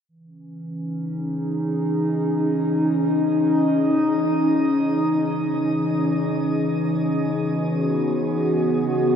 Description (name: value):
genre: ambient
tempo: free time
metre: none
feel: none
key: C# minor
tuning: A4 = 440 Hz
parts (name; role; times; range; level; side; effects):
- warbly tape-like pad; sustained chords; 0.6-9.2 s; E3 to G#4; -20 LUFS; equal; chorus, built-in reverb
- analog drone; drone; 0.7-9.2 s; C#3; -33 LUFS; right 2 dB; chorus
room: wet shimmer reverb, RT60 8.9 s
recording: dark, warm production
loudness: -19 LUFS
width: side -8 dB against mid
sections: 0.1-9.2 A section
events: fade-in on synth drone 0.1-9.2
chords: 0.1 C#madd9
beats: free time